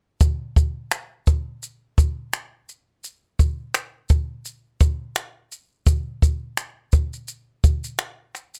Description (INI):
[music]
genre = pop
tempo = 85 BPM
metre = 4/4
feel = swing 55% on 16ths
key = none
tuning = none
[part]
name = compact cocktail drum kit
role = drums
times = 0.2-8.6 s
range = finger snaps, kick drum, shaker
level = -21 LUFS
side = equal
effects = none
[sound]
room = little or no reverb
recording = none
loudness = -23 LUFS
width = mono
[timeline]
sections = 0.2-8.6 A section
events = none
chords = none